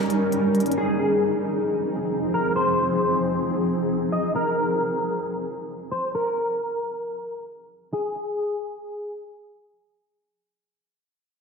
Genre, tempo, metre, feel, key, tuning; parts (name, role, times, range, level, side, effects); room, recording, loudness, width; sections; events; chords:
hip hop, atmospheric cloud-rap; 134 BPM; 4/4; half-time; F minor; A4 = 440 Hz
electric guitar at the edge of break-up; melody; 0.0-9.2 s; Ab4 to Eb5; -26 LUFS; left 1 dB; ensemble chorus, low-pass filter, ping-pong delay
granular cloud pad; sustained chords; 0.0-4.3 s; F3 to Bb4; -23 LUFS; equal; built-in reverb, low-pass filter
electronic hi-hat; drums; 0.1-0.8 s; -38 LUFS; left 1 dB
wet plate reverb, RT60 1.3 s, digital ambience; dreamy mix soaked in reverb; -22 LUFS; side -5 dB against mid
0.0-7.9 A section; 7.9-11.4 B section
break 0.0-0.8; filter sweep 0.0-7.9
0.0 Eb7; 0.8 Fm7; 4.4 N.C.